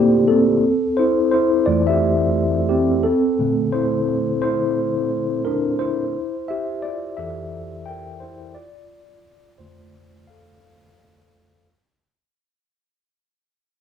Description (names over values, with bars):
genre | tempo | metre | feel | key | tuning
hip hop | 87 BPM | 4/4 | swing 61% on 16ths | F major | A4 = 438 Hz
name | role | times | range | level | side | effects
mellow tine electric piano | solo | 0.0-11.7 s | F2 to G5 | -18 LUFS | equal | medium stereo tremolo
room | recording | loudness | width
wet studio reverb, RT60 0.6 s | cassette tape, small room ambience | -17 LUFS | side -8 dB against mid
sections
0.0-11.7 A section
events
fade-out 0.0-11.7; tine electric piano solo 0.0-11.7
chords
0.0 Bbmaj9; 0.6 Fmaj9; 3.0 Bbmaj9; 6.1 Fmaj9; 8.6 F6